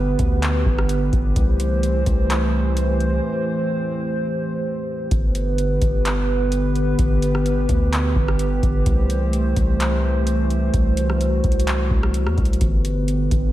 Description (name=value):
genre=hip hop, atmospheric cloud-rap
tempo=128 BPM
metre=4/4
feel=half-time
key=G major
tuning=A4 = 442 Hz
part: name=dark analog pad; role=sustained chords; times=0.0-13.5 s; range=D3 to C5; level=-22 LUFS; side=right 1 dB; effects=wide subtle chorus, sidechain pumping
part: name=long sustained 808-style bass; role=bass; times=0.0-13.5 s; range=G1 to E2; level=-21 LUFS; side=equal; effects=none
part: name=booming analog drum machine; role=drums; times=0.2-13.5 s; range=handclaps, hi-hat, kick drum, rim click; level=-21 LUFS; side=equal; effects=none
room=light reverb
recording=none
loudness=-18 LUFS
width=side -14 dB against mid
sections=0.0-5.1 A section; 5.1-13.5 A section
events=break 3.2-5.1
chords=0.0 G; 1.4 C6; 5.1 G; 8.9 C6; 12.6 G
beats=0.42 0.89 | 1.36 1.83 2.30 2.77 | 3.24 3.71 4.17 4.64 | 5.11 5.58 6.05 6.52 | 6.99 7.46 7.92 8.39 | 8.86 9.33 9.80 10.27 | 10.74 11.21 11.67 12.14 | 12.61 13.08